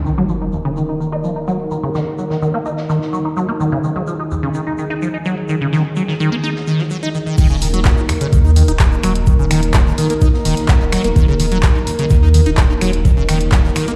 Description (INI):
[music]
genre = acid house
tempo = 127 BPM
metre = 4/4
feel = straight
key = Eb minor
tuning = A4 = 440 Hz
[part]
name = dark analog pad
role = sustained chords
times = 0.0-14.0 s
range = Eb3 to Bb4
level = -24 LUFS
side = equal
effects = chorus, vintage 12-bit sampler grit, sidechain pumping
[part]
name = sub drop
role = sound effects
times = 0.0-1.7 s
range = none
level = -29 LUFS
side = equal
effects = none
[part]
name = liquid acid bass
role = riff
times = 0.1-13.9 s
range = Eb2 to Eb4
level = -21 LUFS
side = equal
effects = phaser, analog chorus, sidechain pumping, digital delay
[part]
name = shaker and snare drum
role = drums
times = 0.1-13.9 s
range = none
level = -40 LUFS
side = equal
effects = high-pass filter on snare, low-pass filter on snare, high-pass filter on perc, low-pass filter on perc, high-pass filter on room, low-pass filter on room
[part]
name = punchy analog drum machine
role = drums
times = 0.2-14.0 s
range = crash cymbal, finger snaps, handclaps, hi-hat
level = -25 LUFS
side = equal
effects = low-pass filter on hats, low-pass filter on snare, low-pass filter on cymbals, low-pass filter on room
[part]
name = warm sub bass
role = bass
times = 7.4-13.7 s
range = Eb1 to Eb2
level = -18 LUFS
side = equal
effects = sidechain pumping
[part]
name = electronic kick drum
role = drums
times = 7.4-13.6 s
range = none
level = -16 LUFS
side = equal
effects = overdrive
[sound]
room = light reverb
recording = played on a big sound system in a bare room, large studio reverb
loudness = -16 LUFS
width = mono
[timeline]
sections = 0.0-7.4 A section; 7.4-14.0 B section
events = impact 0.0-1.7; filter sweep on acid bass 0.0-7.4; drop 7.4-14.0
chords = 0.0 Eb5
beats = 0.29 0.77 1.24 | 1.71 2.18 2.66 3.13 | 3.60 4.07 4.55 5.02 | 5.49 5.96 6.44 6.91 | 7.38 7.85 8.33 8.80 | 9.27 9.74 10.22 10.69 | 11.16 11.63 12.11 12.58 | 13.05 13.52